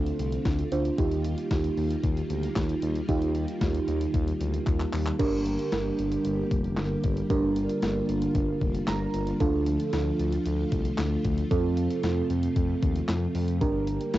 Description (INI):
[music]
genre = synth-pop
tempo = 114 BPM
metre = 4/4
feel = straight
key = G minor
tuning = A4 = 440 Hz
[part]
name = mellow FM electric piano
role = accompaniment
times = 0.0-14.2 s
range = C4 to Bb5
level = -29 LUFS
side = right 4 dB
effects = chorus, phaser
[part]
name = string machine, violas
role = sustained chords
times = 0.0-14.2 s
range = C3 to G4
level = -32 LUFS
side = left 2 dB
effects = ensemble chorus
[part]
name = smooth synth bass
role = bass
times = 0.0-14.2 s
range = F1 to F2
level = -30 LUFS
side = left 1 dB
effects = none
[part]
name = clean 12-bit digital drum machine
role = drums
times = 0.1-14.2 s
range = crash cymbal, handclaps, hi-hat, kick drum, snare drum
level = -29 LUFS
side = left 1 dB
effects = cassette tape
[sound]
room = light reverb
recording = home recording on cassette, nothing above 7.8 kHz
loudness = -24 LUFS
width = side -15 dB against mid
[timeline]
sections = 0.0-5.2 A section; 5.2-14.2 B section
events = drum fill 4.7-5.2; FM electric piano fill 8.6-9.4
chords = 0.0 Dm7; 1.0 Ebadd9; 5.2 Gm; 9.4 Dm; 11.5 F; 13.6 Gm